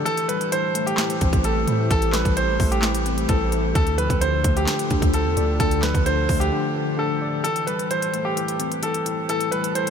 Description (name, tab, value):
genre	hip hop, trap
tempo	130 BPM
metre	4/4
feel	half-time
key	A minor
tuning	A4 = 440 Hz
part	bright concert grand piano	melody	0.0-9.9 s	G4 to C5	-24 LUFS	equal	tape echo
part	tine electric piano	accompaniment	0.0-9.9 s	D3 to D5	-27 LUFS	left 4 dB	medium stereo tremolo
part	long sustained 808-style bass	bass	0.0-6.5 s	A1 to A2	-24 LUFS	right 1 dB	none
part	warbly tape-like pad	sustained chords	0.7-7.4 s	D3 to C5	-30 LUFS	equal	chorus, built-in reverb, tremolo
part	trap drum kit	drums	0.1-9.9 s	handclaps, hi-hat, kick drum, snare drum	-25 LUFS	equal	none
room	moderate huge ambient reverb, RT60 7.5 s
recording	dreamy mix soaked in reverb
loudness	-19 LUFS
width	side -7 dB against mid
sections	0.0-7.4 A section; 7.4-9.9 B section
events	break 0.1-1.0, 6.5-7.4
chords	0.1 Am7; 3.8 Dm; 7.4 Am7